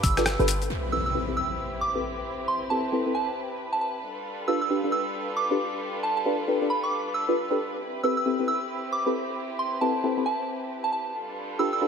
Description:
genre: UK garage, two-step garage.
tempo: 135 BPM.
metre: 4/4.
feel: swing 62% on 16ths.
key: A minor.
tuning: A4 = 440 Hz.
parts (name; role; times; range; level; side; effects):
soft synth bell; melody; 0.0-11.8 s; A5 to E6; -29 LUFS; right 2 dB; chorus, ping-pong delay.
muted studio violin section; sustained chords; 0.0-11.9 s; G3 to B4; -34 LUFS; left 1 dB; sidechain pumping.
short 808-style bass; bass; 0.0-0.7 s; G1; -27 LUFS; equal; tube saturation.
boom bap sampler-style drum kit; drums; 0.0-0.7 s; hi-hat, rim click, shaker; -29 LUFS; left 2 dB; none.
deep mellow chord stab; stabs; 0.2-11.9 s; C4 to B4; -28 LUFS; left 1 dB; chorus, phaser, ping-pong delay.
impact; sound effects; 0.7-2.5 s; none; -34 LUFS; equal; none.
room: moderate lush hall reverb, RT60 2.3 s.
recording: none.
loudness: -25 LUFS.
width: side -6 dB against mid.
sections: 0.7-11.9 A section.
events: band accent 0.3; impact 0.7-2.5.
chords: 0.0 G9; 0.7 Am9; 4.0 G9; 7.8 Am9; 11.1 G9.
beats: 0.26 | 0.70 1.15 1.59 2.03 | 2.48 2.92 3.37 3.81 | 4.26 4.70 5.15 5.59 | 6.03 6.48 6.92 7.37 | 7.81 8.26 8.70 9.15 | 9.59 10.03 10.48 10.92 | 11.37 11.81.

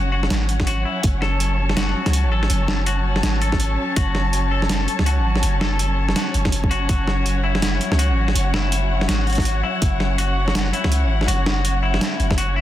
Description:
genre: half-time drum and bass.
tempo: 164 BPM.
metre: 4/4.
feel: swing 60% on 16ths, half-time.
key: F# minor.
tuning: A4 = 440 Hz.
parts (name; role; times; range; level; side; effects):
dark symphonic string section; sustained chords; 0.0-12.6 s; F#3 to A5; -26 LUFS; left 1 dB; sidechain pumping.
clean electric guitar; arpeggios; 0.0-12.6 s; E4 to A4; -26 LUFS; left 4 dB; lush chorus, dub echo.
long sustained 808-style bass; bass; 0.0-12.6 s; F#1 to C#2; -21 LUFS; equal; none.
boom bap sampler-style drum kit; drums; 0.2-12.5 s; hi-hat, snare drum; -24 LUFS; right 1 dB; none.
electronic kick drum; drums; 0.6-1.1, 3.5-4.1, 6.5-7.0, 9.4-9.9, 12.3-12.4 s; none; -20 LUFS; equal; none.
room: light reverb, digital ambience.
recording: dense, heavily limited modern master.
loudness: -17 LUFS.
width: side -13 dB against mid.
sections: 0.0-12.6 A section.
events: none.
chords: 0.0 F#5.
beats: 0.31 0.67 | 1.04 1.41 1.77 2.14 | 2.50 2.87 3.23 3.60 | 3.97 4.33 4.70 5.06 | 5.43 5.79 6.16 6.53 | 6.89 7.26 7.62 7.99 | 8.36 8.72 9.09 9.45 | 9.82 10.19 10.55 10.92 | 11.28 11.65 12.01 12.38.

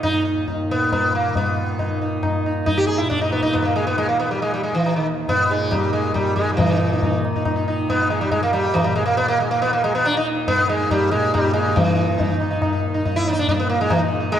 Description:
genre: indian classical, Hindustani.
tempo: 138 BPM.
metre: 3/4.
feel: straight.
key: Eb raga bhairav.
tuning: A4 = 440 Hz.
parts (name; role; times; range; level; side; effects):
sitar; melody; 0.0-14.4 s; Eb3 to Ab4; -19 LUFS; right 1 dB; none.
tanpura; drone; 0.0-14.4 s; Eb2 to Eb3; -28 LUFS; equal; none.
tabla; percussion; 0.0-14.4 s; none; -24 LUFS; left 3 dB; none.
room: wet concert hall reverb, RT60 2.3 s.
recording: none.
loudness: -18 LUFS.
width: side -10 dB against mid.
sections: 0.0-6.6 A section; 6.6-14.4 B section.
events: speeding up 0.0-14.4.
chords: none.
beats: | 0.03 0.47 0.91 | 1.35 1.79 2.23 | 2.67 3.11 3.54 | 3.98 4.42 4.85 | 5.29 5.72 6.16 | 6.59 7.02 7.46 | 7.89 8.32 8.75 | 9.19 9.62 10.05 | 10.48 10.91 11.34 | 11.77 12.19 12.62 | 13.05 13.47 13.90 | 14.33.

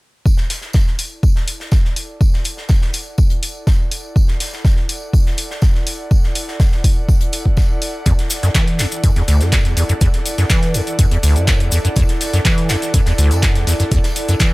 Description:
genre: acid house.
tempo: 123 BPM.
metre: 4/4.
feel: straight.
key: unclear.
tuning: A4 = 440 Hz.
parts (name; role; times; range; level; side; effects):
electronic kick drum; drums; 0.3-14.5 s; none; -14 LUFS; equal; none.
modern studio drum kit; drums; 0.3-14.5 s; hi-hat, snare drum, tambourine; -31 LUFS; left 1 dB; sidechain pumping on hats, high-pass filter on hats, high-pass filter on snare, sidechain pumping on perc, high-pass filter on perc, high-pass filter on room.
airy breathy pad; texture; 1.1-14.5 s; E4 to F#5; -27 LUFS; right 1 dB; chorus, sidechain pumping.
punchy analog drum machine; drums; 0.5-14.5 s; handclaps, hi-hat; -22 LUFS; equal; none.
acid bass, square; riff; 8.1-14.5 s; D2 to E3; -16 LUFS; equal; lush chorus, tape echo.
maracas; percussion; 8.1-14.5 s; none; -26 LUFS; left 3 dB; none.
room: studio ambience.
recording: none.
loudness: -14 LUFS.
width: side -22 dB against mid.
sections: 0.3-14.5 A section.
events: fade-in on analog synth pad 0.3-14.5.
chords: 0.3 Dadd9.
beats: | 0.26 0.74 1.23 1.72 | 2.21 2.70 3.18 3.67 | 4.16 4.65 5.13 5.62 | 6.11 6.60 7.09 7.57 | 8.06 8.55 9.04 9.53 | 10.01 10.50 10.99 11.48 | 11.96 12.45 12.94 13.43 | 13.91 14.40.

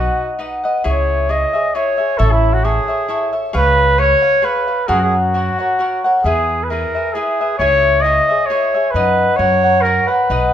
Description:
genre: mexican folk, mariachi.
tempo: 133 BPM.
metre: 3/4.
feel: swing 54% on 8ths.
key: unclear.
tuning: A4 = 440 Hz.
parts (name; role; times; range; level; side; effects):
warm trumpet; melody; 0.0-10.5 s; E4 to D#5; -16 LUFS; equal; none.
cavaquinho; accompaniment; 0.0-10.5 s; D#4 to F#5; -18 LUFS; left 1 dB; none.
upright bass; bass; 0.0-10.5 s; A1 to F#2; -19 LUFS; right 1 dB; none.
room: moderate recital hall reverb, RT60 1.3 s.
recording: minimal, uncompressed stereo recording.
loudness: -13 LUFS.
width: side -10 dB against mid.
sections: 0.0-10.5 A section.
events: none.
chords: 0.0 B; 0.8 C#m; 2.2 A; 3.5 C#7; 4.9 F#; 6.2 E; 7.6 C#m; 9.0 B/F#; 9.4 F#.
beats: 0.39 | 0.84 1.29 1.75 | 2.20 2.65 3.09 | 3.54 3.99 4.44 | 4.89 5.34 5.79 | 6.25 6.70 7.15 | 7.60 8.05 8.50 | 8.95 9.40 9.85 | 10.30.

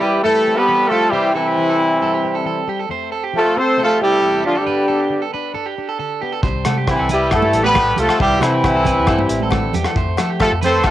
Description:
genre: highlife guitar band.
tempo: 136 BPM.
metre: 4/4.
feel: straight.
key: C major.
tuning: A4 = 440 Hz.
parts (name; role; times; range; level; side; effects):
bright horn section; melody; 0.0-10.9 s; E3 to C5; -15 LUFS; equal; none.
raspy tenor saxophone; second line; 0.0-10.9 s; C3 to A3; -29 LUFS; left 7 dB; none.
fingerpicked plugged-in swing-style acoustic guitar; accompaniment; 0.0-10.9 s; E2 to E4; -28 LUFS; left 7 dB; none.
electric guitar at the edge of break-up; arpeggios; 0.0-10.9 s; G4 to C5; -24 LUFS; right 8 dB; analog delay.
hollow-body short-scale fingered electric bass; bass; 6.4-10.9 s; A1 to F3; -22 LUFS; equal; none.
cloth-damped thuddy drum kit; drums; 6.4-10.9 s; hi-hat, kick drum, rim click; -22 LUFS; equal; cassette tape.
agogo bells; percussion; 6.7-10.9 s; none; -26 LUFS; left 10 dB; none.
congas; percussion; 6.7-10.7 s; none; -25 LUFS; right 9 dB; none.
room: little or no reverb.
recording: home recording on cassette.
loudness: -14 LUFS.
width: side -13 dB against mid.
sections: 0.0-10.9 A section.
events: none.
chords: 0.0 C; 2.9 F; 4.7 G; 6.4 C; 10.0 F.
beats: 0.25 0.69 | 1.13 1.57 2.02 2.46 | 2.90 3.34 3.79 4.23 | 4.67 5.11 5.55 5.99 | 6.43 6.87 7.32 7.76 | 8.20 8.64 9.08 9.52 | 9.96 10.40 10.85.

